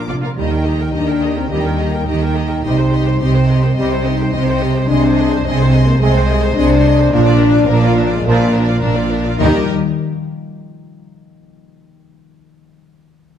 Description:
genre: cinematic, heroic adventure film score.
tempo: 106 BPM.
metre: 4/4.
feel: straight.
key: Eb major.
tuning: A4 = 440 Hz.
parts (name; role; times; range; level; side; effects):
warm symphonic violin section; melody; 0.0-9.7 s; D5 to C6; -29 LUFS; left 6 dB; none.
mellow French horn section; sustained chords; 0.0-9.6 s; Ab3 to Eb4; -18 LUFS; left 4 dB; none.
warm trombone section; sustained chords; 0.0-9.6 s; Bb2 to Ab3; -25 LUFS; right 4 dB; none.
concert harp; arpeggios; 0.0-11.7 s; Bb2 to F6; -24 LUFS; left 8 dB; none.
rich symphonic cello section; bass; 0.0-9.7 s; Bb2 to Eb3; -19 LUFS; right 3 dB; none.
warm symphonic violin section; second line; 0.1-9.7 s; F4 to G5; -25 LUFS; left 1 dB; none.
clear symphonic viola section; accompaniment; 0.1-9.7 s; Bb3 to C5; -25 LUFS; right 2 dB; none.
warm symphonic double bass section; bass; 0.1-9.7 s; Bb1 to Eb2; -17 LUFS; right 3 dB; none.
room: wet recital hall reverb, RT60 1.5 s.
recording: none.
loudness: -12 LUFS.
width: side -9 dB against mid.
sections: 0.4-9.4 A section; 9.4-11.7 B section.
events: none.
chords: 0.4 Eb; 2.6 Cm; 4.9 Ab/C; 7.1 Bb; 9.4 Eb.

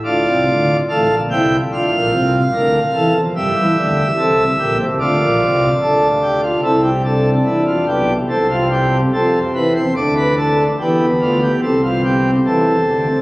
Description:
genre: classical, baroque-style 3-part fugue for pipe organ.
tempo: 72 BPM.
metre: 4/4.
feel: straight.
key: D minor.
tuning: A4 = 440 Hz.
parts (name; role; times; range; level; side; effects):
pipe organ, principal chorus; solo; 0.0-13.2 s; A1 to G5; -13 LUFS; equal; none.
room: wet cathedral reverb, RT60 4.8 s.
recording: recorded on a phone in the room, club ambience.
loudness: -13 LUFS.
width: side -20 dB against mid.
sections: 0.0-13.2 A section.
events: none.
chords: 0.0 Dm; 3.4 Gm; 5.0 Dm; 6.6 Am/C; 10.0 Dm; 11.6 Am/C.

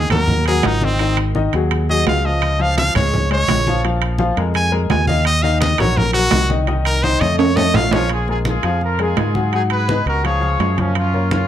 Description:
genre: latin, salsa.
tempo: 169 BPM.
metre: 4/4.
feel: straight.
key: Bb minor.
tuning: A4 = 440 Hz.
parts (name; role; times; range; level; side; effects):
brilliant trumpet; melody; 0.0-8.1 s; C4 to Ab5; -19 LUFS; equal; slapback echo.
clear upright piano; accompaniment; 0.0-11.4 s; Eb3 to Gb5; -22 LUFS; left 5 dB; none.
modern bright fingered electric bass; bass; 0.0-11.4 s; Ab1 to Ab2; -19 LUFS; equal; none.
congas; percussion; 0.1-11.5 s; none; -24 LUFS; equal; none.
timbales; percussion; 0.1-11.5 s; none; -22 LUFS; right 6 dB; none.
bright trumpet section; melody; 7.9-11.5 s; Bb3 to Db5; -22 LUFS; left 1 dB; none.
room: light reverb.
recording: dark, warm production.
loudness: -14 LUFS.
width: side -10 dB against mid.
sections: 0.0-8.1 A section; 8.1-11.5 B section.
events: trumpet solo 0.0-8.1; drum fill 7.2-8.1.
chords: 0.0 Ebm; 1.0 Ab5; 2.4 Db; 3.8 Bb5; 5.3 Ebm; 6.7 Cm; 7.4 Faug; 8.1 Bb5; 9.5 Abm7; 10.2 Db; 11.0 Gbmaj7.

